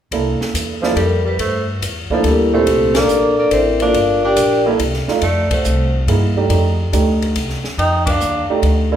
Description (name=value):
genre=jazz, small-group swing and bop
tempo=141 BPM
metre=3/4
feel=swing 68% on 8ths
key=C mixolydian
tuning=A4 = 439 Hz
part: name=warm upright piano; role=accompaniment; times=0.1-9.0 s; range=Bb2 to A4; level=-20 LUFS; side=right 6 dB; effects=none
part: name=upright bass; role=bass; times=0.1-9.0 s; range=G1 to G2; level=-19 LUFS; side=equal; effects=none
part: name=open jazz drum kit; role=drums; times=0.1-8.8 s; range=hi-hat, kick drum, ride cymbal, snare drum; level=-24 LUFS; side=left 2 dB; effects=none
part: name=mellow tenor saxophone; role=second line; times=0.8-8.5 s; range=F3 to Eb4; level=-21 LUFS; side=right 2 dB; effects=none
part: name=vibraphone with medium hard mallets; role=melody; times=0.9-8.5 s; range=A3 to G5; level=-17 LUFS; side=left 2 dB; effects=none
room=wet recital hall reverb, RT60 1.5 s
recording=recorded in a church or concert hall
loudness=-14 LUFS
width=side -9 dB against mid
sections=0.1-9.0 A section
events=band accent 2.9, 5.4, 8.0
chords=0.1 C13; 3.9 Gm7; 4.8 Csus2; 5.2 F13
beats=| 0.11 0.54 0.96 | 1.39 1.81 2.24 | 2.67 3.09 3.52 | 3.94 4.37 4.79 | 5.22 5.65 6.07 | 6.50 6.92 7.35 | 7.78 8.20 8.63